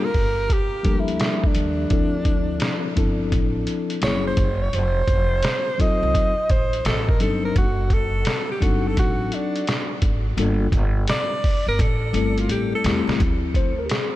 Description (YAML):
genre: hip hop, jazz-hop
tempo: 85 BPM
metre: 4/4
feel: swing 66% on 16ths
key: D minor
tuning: A4 = 443 Hz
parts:
  - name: mellow alto saxophone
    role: melody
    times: 0.0-13.2 s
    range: D4 to Eb5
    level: -25 LUFS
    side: right 1 dB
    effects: tape echo
  - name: mellow tine electric piano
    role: accompaniment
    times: 0.0-14.2 s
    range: F3 to C5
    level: -26 LUFS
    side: left 4 dB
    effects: slow stereo tremolo
  - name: upright bass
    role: bass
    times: 0.1-13.9 s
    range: F1 to E2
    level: -25 LUFS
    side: equal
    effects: none
  - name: trip hop sampler-style drum kit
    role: drums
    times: 0.1-14.1 s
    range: hi-hat, kick drum, snare drum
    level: -22 LUFS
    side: equal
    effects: vintage 12-bit sampler grit
room: light reverb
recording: none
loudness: -19 LUFS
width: side -15 dB against mid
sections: 0.0-13.2 A section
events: alto saxophone solo 0.0-13.2; drum fill 11.8-13.2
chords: 0.0 Gm9; 1.9 Dm9; 4.0 F#9; 4.7 F7b9; 6.8 D7b9b13; 7.6 D7b9/F#; 10.4 Gm9; 11.8 Am7; 13.2 Dm9